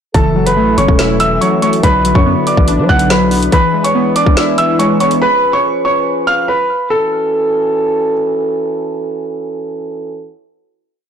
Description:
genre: hip hop, drill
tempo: 142 BPM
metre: 4/4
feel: half-time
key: F# minor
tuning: A4 = 440 Hz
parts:
  - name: warm concert grand piano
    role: melody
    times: 0.1-8.1 s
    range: A4 to F#6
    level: -14 LUFS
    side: right 1 dB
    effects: low-pass filter, tape echo
  - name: warbly lo-fi synth keys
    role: accompaniment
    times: 0.1-5.2 s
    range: D3 to E4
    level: -14 LUFS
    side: left 1 dB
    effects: chorus, low-pass filter
  - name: dark French horn section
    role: sustained chords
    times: 0.1-10.3 s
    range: D3 to B4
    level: -18 LUFS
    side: right 1 dB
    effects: none
  - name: growling 808-style bass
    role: bass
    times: 0.1-3.5 s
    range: E1 to F#3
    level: -16 LUFS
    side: equal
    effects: none
  - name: drill drum kit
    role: drums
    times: 0.1-5.2 s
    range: hi-hat, kick drum, snare drum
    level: -15 LUFS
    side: equal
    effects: none
room: moderate digital room reverb, RT60 1.1 s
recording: blown-out, overdriven recording, overdrive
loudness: -10 LUFS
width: side -8 dB against mid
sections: 0.1-6.9 hook; 6.9-10.3 final chord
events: none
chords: 0.1 F#m7; 1.8 Bmadd9; 3.5 E7; 5.2 C#7; 6.9 F#m7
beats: | 0.14 0.57 0.99 1.41 | 1.83 2.26 2.68 3.10 | 3.52 3.95 4.37 4.79 | 5.21 5.64 6.06 6.48 | 6.91 7.33 7.75 8.17 | 8.60 9.02 9.44 9.86

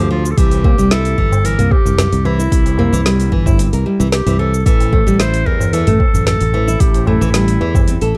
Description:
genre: organic downtempo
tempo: 112 BPM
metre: 4/4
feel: straight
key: unclear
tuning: A4 = 441 Hz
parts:
  - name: bright clarinet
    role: melody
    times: 0.0-8.1 s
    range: E4 to C5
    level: -23 LUFS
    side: equal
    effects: digital delay
  - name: nylon-string guitar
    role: arpeggios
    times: 0.0-8.2 s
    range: E3 to Bb4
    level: -21 LUFS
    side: equal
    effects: delay
  - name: sustaining fretless electric bass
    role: bass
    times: 0.0-8.1 s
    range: G1 to E2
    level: -19 LUFS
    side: equal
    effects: subtle chorus, sidechain pumping
  - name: tabla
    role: percussion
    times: 0.1-7.9 s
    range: none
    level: -26 LUFS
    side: equal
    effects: none
  - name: afro-pop drum kit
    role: drums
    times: 0.3-8.1 s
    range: hi-hat, shaker, snare drum, toms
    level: -22 LUFS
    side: equal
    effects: none
  - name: electronic kick drum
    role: drums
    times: 0.4-7.9 s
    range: none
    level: -16 LUFS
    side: equal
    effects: none
room: studio reverb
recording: dark, warm production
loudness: -14 LUFS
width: mono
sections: 0.0-8.2 A section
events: none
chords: 0.4 C; 4.7 A5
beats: | 0.38 0.91 1.45 1.99 | 2.52 3.06 3.59 4.13 | 4.66 5.20 5.74 6.27 | 6.81 7.34 7.88

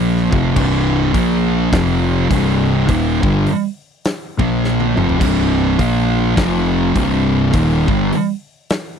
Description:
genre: stoner and doom metal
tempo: 103 BPM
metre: 4/4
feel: swing 59% on 8ths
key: C minor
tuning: A4 = 443 Hz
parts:
  - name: thick fuzz guitar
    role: riff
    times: 0.0-8.1 s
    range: C2 to Bb3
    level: -18 LUFS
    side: left 11 dB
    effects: distortion
  - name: thick fuzz guitar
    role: riff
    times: 0.0-8.1 s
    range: C2 to Bb3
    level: -17 LUFS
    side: right 10 dB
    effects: distortion
  - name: fuzz fingered electric bass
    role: bass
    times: 0.0-8.1 s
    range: C1 to Bb1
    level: -21 LUFS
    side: equal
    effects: overdrive
  - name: big rock drum kit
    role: drums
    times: 0.2-8.9 s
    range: crash cymbal, hi-hat, kick drum, snare drum, toms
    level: -21 LUFS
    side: equal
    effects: none
room: little or no reverb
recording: dry, close 1970s-style studio recording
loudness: -14 LUFS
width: side -7 dB against mid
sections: 0.0-9.0 A section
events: drum fill 4.6-5.2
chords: 0.3 C5; 1.1 Bb5; 1.7 F5; 2.3 Cm; 4.3 Bb5; 4.9 C5; 5.8 Bb5; 6.4 F5; 7.0 Cm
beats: | 0.56 1.14 1.73 2.31 | 2.89 3.47 4.05 4.63 | 5.21 5.80 6.38 6.96 | 7.54 8.12 8.70

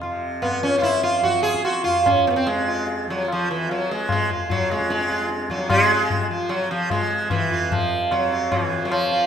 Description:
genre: indian classical, Hindustani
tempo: 148 BPM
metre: 4/4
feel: straight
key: F raga todi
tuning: A4 = 440 Hz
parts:
  - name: sitar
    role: melody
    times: 0.0-9.3 s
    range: E3 to Ab4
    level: -20 LUFS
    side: right 1 dB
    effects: none
  - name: tanpura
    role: drone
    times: 0.0-9.3 s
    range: F2 to F3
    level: -30 LUFS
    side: left 1 dB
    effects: none
  - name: tabla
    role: percussion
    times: 0.0-9.1 s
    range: none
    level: -26 LUFS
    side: left 2 dB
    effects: none
room: wet recital hall reverb, RT60 1.4 s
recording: minimal, uncompressed stereo recording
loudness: -19 LUFS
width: side -8 dB against mid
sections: 0.0-5.7 A section; 5.7-9.3 B section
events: none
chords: none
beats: 0.02 0.42 | 0.83 1.24 1.65 2.06 | 2.46 2.87 3.28 3.68 | 4.09 4.49 4.89 5.30 | 5.70 6.11 6.51 6.91 | 7.31 7.71 8.11 8.51 | 8.91

